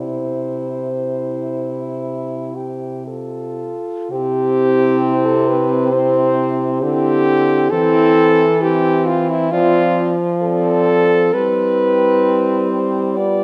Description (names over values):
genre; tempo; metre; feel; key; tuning
classical, lyrical piece for horn quartet; 56-67 BPM; 4/4; rubato; C major; A4 = 438 Hz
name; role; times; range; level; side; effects
dark French horn; melody; 0.0-13.4 s; E4 to D5; -25 LUFS; equal; none
mellow French horn; second line; 0.0-13.4 s; E4 to D5; -20 LUFS; equal; none
warm French horn; accompaniment; 0.0-13.4 s; B3 to A4; -25 LUFS; equal; none
mellow French horn; bass; 0.0-13.4 s; C3 to G3; -23 LUFS; equal; none
room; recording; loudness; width
light reverb; close, detailed microphones; -16 LUFS; mono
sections
0.0-4.1 A section; 4.1-13.4 B section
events
none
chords
0.0 C; 7.7 C/E; 9.5 Dm7/F; 11.3 C/G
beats
1.03 2.06 3.08 | 4.11 5.03 5.93 6.83 | 7.72 8.62 9.53 10.43 | 11.34 12.25 13.17